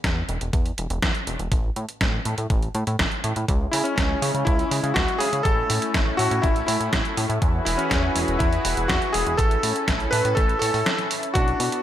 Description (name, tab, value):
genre	italo disco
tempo	122 BPM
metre	4/4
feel	straight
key	A major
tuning	A4 = 441 Hz
part	chorused synth bass	bass	0.0-11.7 s	E1 to C#3	-26 LUFS	equal	none
part	detuned 8-bit digital drum machine	drums	0.0-11.8 s	hi-hat, snare drum	-26 LUFS	right 1 dB	small room ambience, gated reverb
part	electronic kick drum	drums	0.0-11.5 s	none	-24 LUFS	equal	small room ambience
part	lush unison pad	sustained chords	3.5-11.8 s	E3 to B4	-28 LUFS	equal	chorus, shimmer reverb
part	bright electric grand piano	melody	3.7-11.8 s	C#4 to B4	-24 LUFS	left 1 dB	tape echo, shimmer reverb
room	light reverb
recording	none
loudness	-20 LUFS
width	side -11 dB against mid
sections	0.0-11.4 A section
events	break 10.9-11.4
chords	0.0 N.C.; 3.5 C#m; 5.5 A; 7.4 Eadd9; 9.4 A